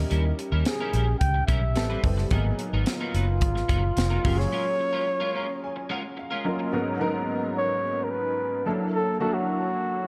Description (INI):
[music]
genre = polished 1980s jazz-funk pop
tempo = 109 BPM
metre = 4/4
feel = straight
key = unclear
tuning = A4 = 439 Hz
[part]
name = breathy flugelhorn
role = melody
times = 0.0-10.1 s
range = E#4 to G5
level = -31 LUFS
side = equal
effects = none
[part]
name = warm grand piano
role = accompaniment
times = 0.0-10.1 s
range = G#2 to A#5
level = -32 LUFS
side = equal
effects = analog chorus
[part]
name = vintage muted fingered electric bass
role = bass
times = 0.0-4.4 s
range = E#1 to D#2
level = -27 LUFS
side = equal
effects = none
[part]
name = electric guitar at the edge of break-up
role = riff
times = 0.1-6.6 s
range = F#3 to B4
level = -37 LUFS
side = equal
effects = analog chorus
[part]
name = crisp fusion drum kit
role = drums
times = 0.1-4.5 s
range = hi-hat, kick drum, snare drum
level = -30 LUFS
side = equal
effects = none
[sound]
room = light reverb, small room ambience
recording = dark, warm production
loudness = -26 LUFS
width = mono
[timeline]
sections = 0.0-6.7 A section; 6.7-10.1 B section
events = break 4.5-6.7; grand piano fill 5.1-6.7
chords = 0.0 D#7b9; 1.8 Am9; 2.3 G#m9; 4.2 F#maj9; 6.7 G#m11; 8.7 F#7alt